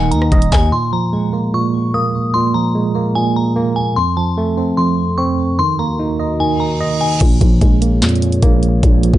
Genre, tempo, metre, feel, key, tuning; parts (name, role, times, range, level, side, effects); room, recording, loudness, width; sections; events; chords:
hip hop, trap; 148 BPM; 4/4; half-time; Bb minor; A4 = 440 Hz
glassy synth bell; melody; 0.0-7.2 s; Ab5 to Eb6; -20 LUFS; left 3 dB; chorus, low-pass filter, digital delay
mellow tine electric piano; accompaniment; 0.0-9.2 s; F2 to Eb5; -16 LUFS; right 3 dB; slow stereo tremolo, low-pass filter
dark analog pad; sustained chords; 0.0-0.7, 4.0-9.2 s; Eb2 to Gb5; -25 LUFS; left 2 dB; chorus
growling 808-style bass; bass; 0.0-0.7, 7.2-9.2 s; Eb1 to F2; -15 LUFS; equal
trap drum kit; drums; 0.1-0.6, 7.2-9.2 s; crash cymbal, handclaps, hi-hat, kick drum, rim click, snare drum; -14 LUFS; equal
reverse cymbal; sound effects; 6.6-7.2 s; -25 LUFS; right 5 dB
digital ambience; dark, warm production, nothing above 10.4 kHz; -13 LUFS; side -14 dB against mid
0.7-7.2 A section; 7.2-9.2 B section
reverse cymbal 6.6-7.2
0.0 Ebm; 0.7 Bb7(no3); 4.0 F; 5.6 Ebm; 7.2 Bbm7